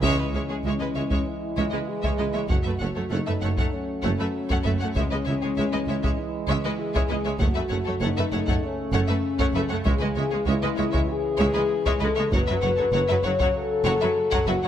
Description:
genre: cinematic, epic orchestral film score.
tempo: 98 BPM.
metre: 4/4.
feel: straight.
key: C# minor.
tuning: A4 = 439 Hz.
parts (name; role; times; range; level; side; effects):
warm symphonic violin section; melody; 0.0-14.7 s; C#5 to F#5; -34 LUFS; left 3 dB; none.
clear chamber violin section; second line; 0.0-14.7 s; G#4 to C#5; -34 LUFS; left 2 dB; none.
clear symphonic viola section; accompaniment; 0.0-14.7 s; F#3 to A3; -31 LUFS; right 2 dB; none.
dark French horn section; sustained chords; 0.0-14.7 s; C#4 to C#5; -27 LUFS; left 4 dB; none.
dark trombone section; sustained chords; 0.0-14.6 s; C#3 to A3; -34 LUFS; right 3 dB; none.
clear studio double bass section; bass; 0.0-14.5 s; F#1 to C#2; -31 LUFS; right 3 dB; none.
mellow tuba; bass; 0.0-14.6 s; F#1 to C#2; -32 LUFS; right 4 dB; none.
rich symphonic cello section; bass; 0.0-14.7 s; C#2 to F#2; -31 LUFS; right 3 dB; none.
solo taiko drums; drums; 0.0-14.7 s; none; -28 LUFS; equal; none.
timpani; percussion; 9.9-10.7 s; C#3; -36 LUFS; left 2 dB; none.
room: light reverb.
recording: close, detailed microphones.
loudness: -22 LUFS.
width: side -10 dB against mid.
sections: 0.0-14.7 A section.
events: band accent 0.0-0.6.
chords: 0.0 C#m; 2.5 F#m; 5.0 C#m; 7.4 F#m; 9.9 C#m; 12.3 F#m.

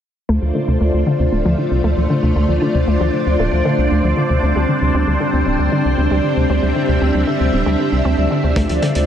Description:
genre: synthwave.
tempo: 116 BPM.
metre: 4/4.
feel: straight.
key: D minor.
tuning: A4 = 440 Hz.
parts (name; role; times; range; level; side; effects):
string machine, full ensemble; sustained chords; 0.3-9.1 s; G3 to E5; -18 LUFS; equal; phaser, ensemble chorus.
wide unison pluck; arpeggios; 0.3-9.1 s; C3 to C4; -20 LUFS; left 1 dB; analog delay.
round analog bass; bass; 0.3-9.1 s; D1 to D2; -18 LUFS; equal; none.
hi-hat; drums; 8.6-9.1 s; none; -28 LUFS; right 1 dB; low-pass filter on hats, low-pass filter on room.
kick drum; drums; 8.6-8.7 s; none; -22 LUFS; equal; none.
room: wet huge ambient reverb, RT60 8.6 s.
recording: dreamy mix soaked in reverb.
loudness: -14 LUFS.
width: side -9 dB against mid.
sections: 0.3-9.1 A section.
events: filter sweep on analog synth bass 0.3-9.1; filter sweep on string machine 0.3-9.1; filter sweep on synth arpeggio sound 0.3-9.1.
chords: 0.3 Dm7; 4.4 Csus2/D.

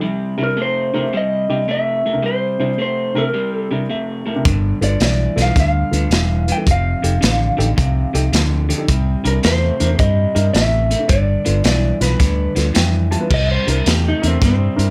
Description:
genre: electric blues shuffle.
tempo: 108 BPM.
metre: 4/4.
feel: swing 66% on 8ths.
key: C major.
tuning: A4 = 441 Hz.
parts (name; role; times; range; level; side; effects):
electric guitar through a small old amp; riff; 0.0-14.9 s; F2 to A3; -25 LUFS; equal; none.
electric guitar through a small old amp; melody; 0.4-14.9 s; C4 to G5; -23 LUFS; equal; none.
dark concert grand piano; accompaniment; 0.4-14.9 s; C3 to A5; -27 LUFS; equal; none.
vintage muted fingered electric bass; bass; 4.5-14.9 s; E1 to G2; -20 LUFS; equal; none.
crunchy breakbeat drum kit; drums; 4.5-14.9 s; crash cymbal, hi-hat, kick drum, snare drum; -22 LUFS; equal; none.
room: light reverb.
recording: none.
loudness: -17 LUFS.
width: mono.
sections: 0.0-13.3 A section; 13.3-14.9 B section.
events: grand piano fill 3.6-4.5, 12.5-13.3; clean electric guitar solo 13.3-14.9.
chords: 0.0 C7; 4.5 G7; 6.7 F7; 8.9 C7; 11.1 G7; 13.3 C7.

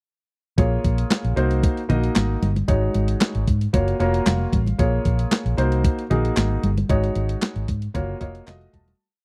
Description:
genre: early-eighties boogie funk.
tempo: 114 BPM.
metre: 4/4.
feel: straight.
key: Bb minor.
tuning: A4 = 442 Hz.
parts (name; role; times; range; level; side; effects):
warm concert grand piano; accompaniment; 0.6-9.0 s; Ab3 to Bb5; -27 LUFS; equal; none.
vintage muted fingered electric bass; bass; 0.6-8.9 s; E1 to Ab2; -24 LUFS; equal; none.
clean 12-bit digital drum machine; drums; 0.6-9.0 s; handclaps, hi-hat, kick drum, snare drum; -25 LUFS; equal; none.
congas; percussion; 0.6-9.0 s; none; -29 LUFS; equal; none.
room: small room ambience.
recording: dry, close 1970s-style studio recording.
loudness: -21 LUFS.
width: mono.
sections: 0.6-9.0 breakdown.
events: grand piano fill 3.7-4.8, 8.0-9.0; fade-out 6.9-9.0.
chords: 0.6 Bbm7; 1.4 Cm7b5; 2.7 Ab7sus4; 3.7 Gbmaj7; 4.8 Bbm7; 5.6 Cm7b5; 6.9 Ab7sus4; 8.0 Gbmaj7; 8.5 F7b9.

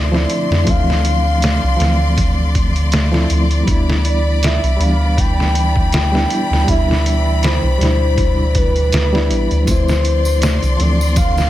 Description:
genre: trip hop.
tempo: 80 BPM.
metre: 4/4.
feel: swing 55% on 16ths.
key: D dorian.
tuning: A4 = 439 Hz.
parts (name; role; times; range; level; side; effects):
pure breathy sine lead; melody; 0.0-11.5 s; B4 to G5; -22 LUFS; equal; chorus, phaser, tape echo.
reed electric piano; accompaniment; 0.0-11.5 s; B2 to E4; -21 LUFS; equal; overdrive, fast tremolo, harmonic tremolo.
warm symphonic string section; sustained chords; 0.0-11.5 s; D3 to C6; -23 LUFS; left 2 dB; none.
soft dub sub bass; bass; 0.0-11.5 s; A1 to F2; -16 LUFS; equal; none.
trip hop sampler-style drum kit; drums; 0.1-11.5 s; hi-hat, kick drum, snare drum; -18 LUFS; equal; none.
tambourine; percussion; 9.7-11.5 s; none; -31 LUFS; right 2 dB; none.
room: digital ambience.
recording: none.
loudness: -13 LUFS.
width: side -14 dB against mid.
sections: 0.0-11.5 A section.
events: none.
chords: 0.0 Dm7; 3.7 Cmaj9; 9.7 Dm7.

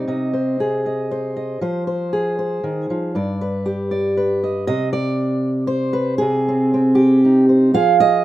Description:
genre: folk, solo fingerstyle acoustic guitar.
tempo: 118 BPM.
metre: 3/4.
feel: straight.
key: unclear.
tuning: A4 = 442 Hz.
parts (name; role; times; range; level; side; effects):
fingerpicked steel-string acoustic guitar; solo; 0.0-8.2 s; G2 to F5; -16 LUFS; right 1 dB; none.
room: moderate studio reverb, RT60 0.7 s.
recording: rough home demo mix.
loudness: -16 LUFS.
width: side -13 dB against mid.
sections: 0.0-4.7 A section; 4.7-8.2 B section.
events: none.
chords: 0.1 Ab/C; 1.6 Fm; 3.1 G; 4.7 N.C.; 6.2 Ab/C.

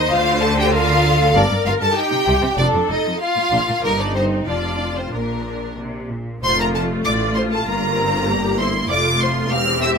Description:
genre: quick classical-period movement for string orchestra.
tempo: 97 BPM.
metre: 2/4.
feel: straight.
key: Bb major, F major from 6.4 s.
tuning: A4 = 440 Hz.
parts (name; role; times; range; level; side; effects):
bright symphonic violin section; melody; 0.0-9.9 s; Bb4 to F6; -20 LUFS; left 2 dB; none.
warm symphonic violin section; second line; 0.0-10.0 s; Bb3 to F5; -23 LUFS; equal; none.
bright symphonic viola section; accompaniment; 0.0-10.0 s; A3 to C5; -23 LUFS; equal; none.
clear symphonic cello section; bass; 0.0-10.0 s; E2 to D3; -24 LUFS; right 1 dB; none.
clear symphonic double bass section; bass; 0.0-10.0 s; E1 to D2; -24 LUFS; right 1 dB; none.
room: light reverb.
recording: minimal, uncompressed stereo recording.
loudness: -16 LUFS.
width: side -6 dB against mid.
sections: 0.0-6.4 A section; 6.4-10.0 B section.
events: none.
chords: 0.1 Dm7; 1.4 Gm; 2.0 Cm; 2.6 F; 3.2 Bb; 3.8 Eb/G; 4.5 Dm7/F; 5.1 Bb; 6.4 F; 7.7 C7/G; 8.9 F.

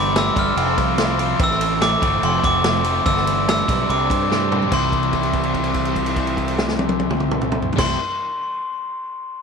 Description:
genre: indie rock.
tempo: 145 BPM.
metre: 4/4.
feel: straight.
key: C major.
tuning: A4 = 440 Hz.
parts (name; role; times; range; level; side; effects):
glockenspiel with hard plastic mallets; melody; 0.0-8.0 s; C6 to F6; -22 LUFS; left 1 dB; tape echo.
overdriven combo organ; sustained chords; 0.0-8.0 s; C3 to C6; -32 LUFS; right 13 dB; none.
overdriven electric guitar; riff; 0.0-8.0 s; E3 to G4; -25 LUFS; left 14 dB; none.
twelve-string electric guitar; riff; 0.0-8.0 s; F2 to G4; -26 LUFS; right 14 dB; wide subtle chorus, tape echo.
growling fingered electric bass; bass; 0.0-8.0 s; F1 to G2; -25 LUFS; equal; overdrive.
vintage drum kit; drums; 0.2-7.9 s; crash cymbal, kick drum, ride cymbal, snare drum, toms; -23 LUFS; equal; none.
room: little or no reverb.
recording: 1960s-style stereo with parts hard left and right.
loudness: -17 LUFS.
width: side -5 dB against mid.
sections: 0.0-4.7 A section; 4.7-8.0 B section.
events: drum fill 4.3-4.7; held note 4.7-7.8.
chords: 0.0 G6; 0.6 F; 1.4 Am; 2.2 F; 3.1 G6; 3.9 Csus2; 4.7 C.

